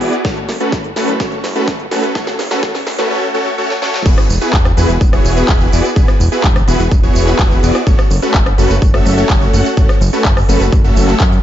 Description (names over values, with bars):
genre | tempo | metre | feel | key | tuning
EDM, festival progressive house | 126 BPM | 4/4 | straight | unclear | A4 = 442 Hz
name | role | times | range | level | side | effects
supersaw chords | riff | 0.0-11.2 s | A3 to F#5 | -16 LUFS | equal | sidechain pumping, low-pass filter, digital delay
fat analog bass | bass | 0.0-11.4 s | E1 to F#2 | -16 LUFS | equal | sidechain pumping, high-pass filter
big-room dance drum kit | drums | 0.0-11.4 s | crash cymbal, handclaps, hi-hat, rim click, snare drum, tambourine | -21 LUFS | equal | high-pass filter on hats, high-pass filter on snare, high-pass filter on cymbals, high-pass filter on perc
electronic kick drum | drums | 0.2-11.3 s | none | -13 LUFS | equal | none
room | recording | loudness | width
light reverb, digital ambience | dark, warm production, high-pass filter, nothing above 7.7 kHz | -11 LUFS | side -11 dB against mid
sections
0.0-4.1 A section; 4.1-11.4 B section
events
build-up 0.0-4.1; drum fill 0.0-3.1, 3.7-4.1; filter sweep on supersaw synth 0.0-4.1; drop 4.1-11.4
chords
0.2 F#m; 4.1 Eadd9; 7.9 F#m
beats
| 0.25 0.72 1.20 1.68 | 2.15 2.63 3.10 3.58 | 4.06 4.53 5.01 5.49 | 5.96 6.44 6.92 7.39 | 7.87 8.34 8.82 9.30 | 9.77 10.25 10.72 11.20